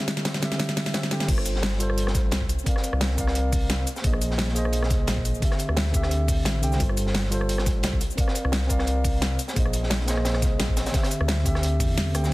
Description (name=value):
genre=liquid drum and bass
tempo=174 BPM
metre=4/4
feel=swing 54% on 16ths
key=G dorian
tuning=A4 = 445 Hz
part: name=mellow tine electric piano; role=accompaniment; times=0.0-12.3 s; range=D3 to G5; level=-28 LUFS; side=equal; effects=tape echo
part: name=crunchy breakbeat drum kit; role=drums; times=0.0-12.3 s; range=hi-hat, snare drum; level=-34 LUFS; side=equal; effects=high-pass filter on hats, high-pass filter on snare, high-pass filter on room
part: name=pop drum kit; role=drums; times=0.0-12.3 s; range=cabasa, crash cymbal, hi-hat, rim click, snare drum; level=-29 LUFS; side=equal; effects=none
part: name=dark detuned saw bass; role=bass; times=0.2-12.3 s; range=G1 to E2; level=-26 LUFS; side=equal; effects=high-pass filter
part: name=electronic kick drum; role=drums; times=1.3-11.9 s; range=none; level=-25 LUFS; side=equal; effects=none
room=digital ambience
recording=dense, heavily limited modern master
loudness=-22 LUFS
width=side -19 dB against mid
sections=0.0-1.3 A section; 1.3-12.3 B section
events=build-up 0.0-1.3; drum fill 0.0-1.3; drop 1.3-12.3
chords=0.0 D9sus4; 1.3 G9sus4; 2.5 C9sus4; 3.9 Bb9sus4; 5.4 D9sus4; 6.8 G9sus4; 8.0 C9sus4; 9.4 Bb9sus4; 10.9 D9sus4